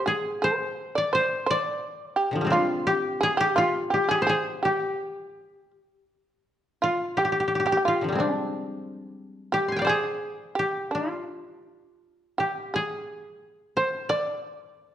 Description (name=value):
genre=japanese traditional, Japanese chamber music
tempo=79-91 BPM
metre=2/4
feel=rubato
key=G in sen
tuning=A4 = 441 Hz
part: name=koto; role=melody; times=0.0-14.9 s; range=C3 to C6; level=-26 LUFS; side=left 2 dB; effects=none
part: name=shamisen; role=second line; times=0.0-14.4 s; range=D4 to D5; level=-27 LUFS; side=right 2 dB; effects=none
room=moderate recital hall reverb, RT60 1.4 s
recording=worn, warbling old tape, cassette tape, warbly pitch drift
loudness=-23 LUFS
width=side -11 dB against mid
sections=0.0-6.1 A section; 6.1-14.9 B section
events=none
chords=none